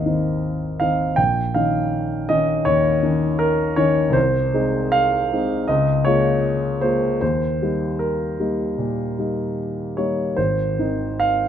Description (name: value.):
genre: classical, romantic character piece for solo piano.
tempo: 71-83 BPM.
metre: 4/4.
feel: rubato.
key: Ab major.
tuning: A4 = 440 Hz.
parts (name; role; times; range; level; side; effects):
warm concert grand piano; solo; 0.0-11.5 s; Ab1 to G5; -18 LUFS; equal; none.
room: light reverb.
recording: close, detailed microphones.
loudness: -18 LUFS.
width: side -9 dB against mid.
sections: 0.0-11.5 A section.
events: none.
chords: 0.0 Ab; 1.2 Eb5/Bb; 4.1 Ab/C; 5.7 Bbm7/Db; 7.2 Eb; 10.4 Ab.